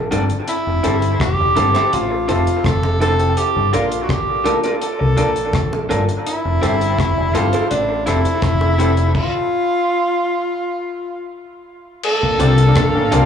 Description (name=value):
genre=lovers rock reggae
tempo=83 BPM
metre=4/4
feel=straight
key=F major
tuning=A4 = 440 Hz
part: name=deep dub fingered electric bass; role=bass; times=0.0-13.3 s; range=E1 to C2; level=-18 LUFS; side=left 1 dB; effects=none
part: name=barky tine electric piano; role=accompaniment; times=0.1-13.3 s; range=Bb3 to A4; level=-24 LUFS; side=left 3 dB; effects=overdrive, dub echo, slapback echo
part: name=electric guitar through a small old amp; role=stabs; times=0.1-13.2 s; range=E4 to D5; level=-26 LUFS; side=right 3 dB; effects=warbly pitch drift, dub echo, slapback echo
part: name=deep reggae drum kit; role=drums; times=0.1-13.3 s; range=crash cymbal, hi-hat, kick drum, rim click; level=-22 LUFS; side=left 1 dB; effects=none
part: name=bongos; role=percussion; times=0.1-12.9 s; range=none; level=-28 LUFS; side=right 4 dB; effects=slapback echo
part: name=warm tenor saxophone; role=melody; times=0.5-13.3 s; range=D4 to A4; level=-19 LUFS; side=equal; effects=tape echo, slapback echo
part: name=string machine, full ensemble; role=second line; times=12.0-13.3 s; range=Bb3 to F5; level=-21 LUFS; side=equal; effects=ensemble chorus, slapback echo
room=light reverb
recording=live gig heard through the venue's PA, club reverb, small room ambience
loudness=-15 LUFS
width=side -8 dB against mid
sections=0.0-12.0 A section; 12.0-13.3 B section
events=stop 9.2-12.0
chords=0.5 Fmaj7; 3.4 Gm7; 6.3 Fmaj7; 9.2 N.C.; 12.0 Bbmaj7